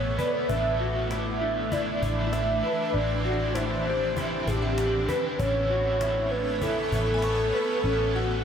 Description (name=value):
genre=dream pop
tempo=98 BPM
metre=4/4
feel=straight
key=A major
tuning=A4 = 440 Hz
part: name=warm velvety synth lead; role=melody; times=0.0-8.4 s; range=G4 to E5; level=-28 LUFS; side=equal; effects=chorus, diffuse ambient delay
part: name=overdriven electric guitar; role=accompaniment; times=0.0-8.4 s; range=A2 to E4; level=-34 LUFS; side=right 3 dB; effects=harmonic tremolo, lush chorus
part: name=shimmering ambient pad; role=sustained chords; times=0.0-8.4 s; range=B2 to C#5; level=-33 LUFS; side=equal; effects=chorus, built-in reverb
part: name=vintage muted fingered electric bass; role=bass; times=0.0-8.4 s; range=A1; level=-30 LUFS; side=equal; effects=none
part: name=glassy synth bell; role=texture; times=0.0-8.4 s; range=D4 to C#6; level=-41 LUFS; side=left 2 dB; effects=chorus, phaser, diffuse ambient delay
part: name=mellow electric guitar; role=arpeggios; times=0.2-8.4 s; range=C#4 to B4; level=-32 LUFS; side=left 2 dB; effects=ensemble chorus, diffuse ambient delay
part: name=cajon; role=drums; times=0.2-8.2 s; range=none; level=-38 LUFS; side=equal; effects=none
room=wet plate reverb, RT60 1.9 s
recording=dreamy mix soaked in reverb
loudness=-24 LUFS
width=side -8 dB against mid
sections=0.0-8.4 A section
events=none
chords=0.5 Dsus2/A; 2.9 Cadd9/A; 5.4 Aadd9